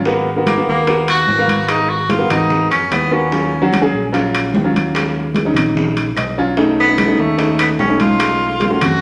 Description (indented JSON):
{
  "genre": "Afro-Cuban jazz",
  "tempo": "148 BPM",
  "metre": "4/4",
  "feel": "straight",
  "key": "Eb minor",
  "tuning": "A4 = 442 Hz",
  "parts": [
    { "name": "fingered electric bass", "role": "bass", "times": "0.0-9.0 s", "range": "Ab1 to Ab2", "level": "-26 LUFS", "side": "equal", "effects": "none" },
    { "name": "warm grand piano", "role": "accompaniment", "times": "0.1-9.0 s", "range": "Gb3 to Ab5", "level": "-20 LUFS", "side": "equal", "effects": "none" },
    { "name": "bongos", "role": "percussion", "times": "0.1-9.0 s", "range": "none", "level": "-28 LUFS", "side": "equal", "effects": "none" },
    { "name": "congas", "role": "percussion", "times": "0.1-9.0 s", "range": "none", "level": "-24 LUFS", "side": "equal", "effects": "none" },
    { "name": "breathy tenor saxophone", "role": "melody", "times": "0.5-3.7, 6.8-9.0 s", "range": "A3 to Gb4", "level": "-19 LUFS", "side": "equal", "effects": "none" },
    { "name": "timbales", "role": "percussion", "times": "0.5-9.0 s", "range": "none", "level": "-26 LUFS", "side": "equal", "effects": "none" },
    { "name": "claves", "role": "percussion", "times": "3.7-9.0 s", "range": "none", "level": "-33 LUFS", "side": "equal", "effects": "none" }
  ],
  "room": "wet large studio reverb, RT60 1.1 s",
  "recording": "none",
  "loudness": "-15 LUFS",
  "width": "mono",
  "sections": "0.0-9.0 A section",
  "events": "grand piano fill 6.0-6.6",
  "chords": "0.1 Abm7; 3.3 Ebm7; 6.6 B7"
}